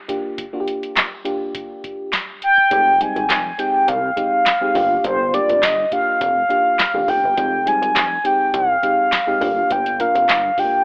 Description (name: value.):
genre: early-eighties boogie funk.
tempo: 103 BPM.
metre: 4/4.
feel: straight.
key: F dorian.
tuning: A4 = 441 Hz.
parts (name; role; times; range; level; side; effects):
mellow FM electric piano; accompaniment; 0.1-10.8 s; G3 to Bb4; -25 LUFS; equal; chorus.
booming analog drum machine; drums; 0.1-10.8 s; handclaps, hi-hat, kick drum, snare drum; -20 LUFS; equal; none.
mellow horn-like synth lead; melody; 2.4-10.8 s; C5 to Ab5; -15 LUFS; equal; chorus.
chorused synth bass; bass; 2.7-10.5 s; F1 to C2; -27 LUFS; equal; none.
room: light reverb.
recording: telephone sound.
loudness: -15 LUFS.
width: side -32 dB against mid.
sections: 0.0-2.7 A section; 2.7-10.8 B section.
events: none.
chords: 0.1 Gm7; 2.7 Fm9; 4.8 Gm7; 7.4 Fm9; 9.4 Gm7.